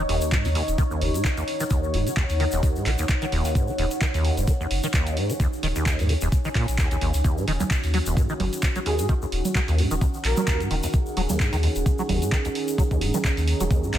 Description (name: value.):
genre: acid house.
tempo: 130 BPM.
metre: 4/4.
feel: swing 55% on 16ths.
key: Eb minor.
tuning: A4 = 440 Hz.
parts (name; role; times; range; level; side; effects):
deep acid bass; riff; 0.0-14.0 s; Eb2 to Gb3; -27 LUFS; equal; ensemble chorus.
warm sub bass; bass; 0.0-14.0 s; Eb1 to Eb2; -24 LUFS; equal; sidechain pumping.
deep dark ambient pad; texture; 0.0-14.0 s; Eb4 to Bb5; -31 LUFS; equal; chorus, built-in reverb, sidechain pumping.
punchy analog drum machine; drums; 0.1-14.0 s; congas, handclaps, hi-hat; -29 LUFS; right 2 dB; none.
egg shaker; percussion; 0.2-13.9 s; none; -37 LUFS; left 4 dB; none.
electronic kick drum; drums; 0.3-13.8 s; none; -23 LUFS; equal; none.
warm analog pad; sustained chords; 7.2-14.0 s; Eb3 to Ab4; -31 LUFS; right 1 dB; chorus, sidechain pumping.
breathy flute-like synth lead; melody; 8.9-10.6 s; Ab4 to Bb4; -31 LUFS; right 1 dB; analog chorus, ping-pong delay.
room: light reverb, digital ambience.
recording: none.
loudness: -21 LUFS.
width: side -11 dB against mid.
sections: 0.0-14.0 A section.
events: none.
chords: 0.0 Ebm7.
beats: 0.32 0.78 1.25 | 1.71 2.17 2.63 3.09 | 3.55 4.01 4.48 4.94 | 5.40 5.86 6.32 6.78 | 7.25 7.71 8.17 8.63 | 9.09 9.55 10.01 10.48 | 10.94 11.40 11.86 12.32 | 12.78 13.24 13.71.